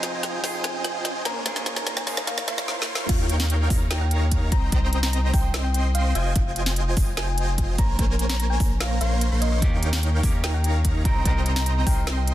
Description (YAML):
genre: future bass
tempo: 147 BPM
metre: 4/4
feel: half-time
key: F minor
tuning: A4 = 440 Hz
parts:
  - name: thumb-piano-like synth pluck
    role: melody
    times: 0.0-12.3 s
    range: Eb5 to Bb5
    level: -33 LUFS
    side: left 1 dB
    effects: chorus, sidechain pumping, tape echo
  - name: clean electric guitar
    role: accompaniment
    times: 0.0-2.7, 9.6-12.3 s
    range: Bb2 to Bb4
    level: -34 LUFS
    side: right 1 dB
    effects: spring reverb, sidechain pumping, digital delay
  - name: dense compressed supersaw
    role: riff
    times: 0.0-12.3 s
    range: Bb3 to C6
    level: -29 LUFS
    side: right 1 dB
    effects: cassette tape, sidechain pumping
  - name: saturated sub bass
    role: bass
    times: 0.0-12.3 s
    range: F1 to Eb2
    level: -23 LUFS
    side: equal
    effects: sidechain pumping
  - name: trap drum kit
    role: drums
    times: 0.0-12.3 s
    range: crash cymbal, hi-hat, snare drum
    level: -29 LUFS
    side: equal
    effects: studio reverb
  - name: riser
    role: sound effects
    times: 0.0-3.1 s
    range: none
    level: -37 LUFS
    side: right 1 dB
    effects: none
  - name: electronic kick drum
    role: drums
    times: 3.1-11.9 s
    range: none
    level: -23 LUFS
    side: equal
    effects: studio reverb
room: little or no reverb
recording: dense, heavily limited modern master, high-pass filter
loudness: -20 LUFS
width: side -14 dB against mid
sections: 0.0-3.1 A section; 3.1-12.3 B section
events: build-up 0.0-3.1; drum fill 0.0-2.7, 2.7-3.1; riser 0.0-3.1; drop 3.1-12.3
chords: 0.0 Fm7; 1.3 Bbm7; 3.1 Eb7; 4.5 Cm7; 6.2 Fm7; 7.8 Bbm7; 9.6 Eb7; 11.1 Cm7